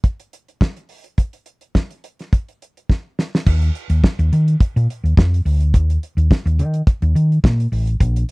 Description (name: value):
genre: disco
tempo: 106 BPM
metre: 4/4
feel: straight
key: unclear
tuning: A4 = 441 Hz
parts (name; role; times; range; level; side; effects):
- damped 70s drum kit; drums; 0.0-8.3 s; crash cymbal, hi-hat, kick drum, snare drum; -14 LUFS; equal; none
- hollow-body short-scale fingered electric bass; bass; 3.5-8.2 s; A1 to Eb3; -15 LUFS; equal; none
room: little or no reverb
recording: dry, close 1970s-style studio recording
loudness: -15 LUFS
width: side -29 dB against mid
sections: 0.0-3.5 A section; 3.5-8.3 B section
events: drum fill 2.9-3.5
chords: none